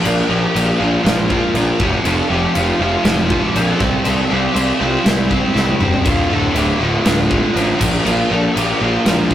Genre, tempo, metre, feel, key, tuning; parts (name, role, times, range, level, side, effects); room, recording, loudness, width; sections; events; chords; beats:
quiet-loud alternative rock; 120 BPM; 4/4; straight; A4 = 436 Hz
lead guitar through a small cranked amp; melody; 0.0-9.3 s; D4 to A5; -22 LUFS; equal; overdrive
biting overdriven guitar; riff; 0.0-9.3 s; D2 to C4; -17 LUFS; equal
fuzz picked electric bass; bass; 0.1-9.3 s; D1 to C2; -19 LUFS; equal; overdrive
big rock drum kit; drums; 0.1-9.3 s; crash cymbal, kick drum, snare drum, toms; -20 LUFS; equal
moderate studio reverb, RT60 0.5 s; rough rehearsal-room recording, tube saturation; -13 LUFS; side -11 dB against mid
0.0-9.3 A section
drum fill 5.6-6.1
0.0 Bb; 1.8 F; 3.8 C6; 6.1 Dm; 7.8 Bb5
| 0.04 0.55 1.05 1.55 | 2.05 2.55 3.05 3.56 | 4.06 4.56 5.06 5.56 | 6.06 6.56 7.06 7.56 | 8.06 8.56 9.06